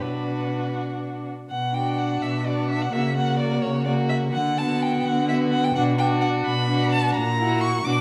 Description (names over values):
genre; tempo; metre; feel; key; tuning
quick classical-period movement for string quartet; 85 BPM (dotted quarters); 6/8; straight; B minor; A4 = 440 Hz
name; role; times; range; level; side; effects
rich violin; melody; 0.0-8.0 s; B4 to D6; -29 LUFS; equal; none
rich violin; second line; 0.0-8.0 s; F#4; -32 LUFS; equal; none
dark viola; accompaniment; 0.0-8.0 s; A#3 to E4; -29 LUFS; equal; none
warm cello; bass; 0.0-8.0 s; A#2 to D3; -28 LUFS; equal; none
room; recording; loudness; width
moderate scoring stage reverb, RT60 1.5 s; none; -23 LUFS; mono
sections
0.0-1.5 A section; 1.5-8.0 B section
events
none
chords
0.0 Bm; 2.9 F#/C#; 4.3 Bm/D; 5.8 Bm; 7.2 F#7/A#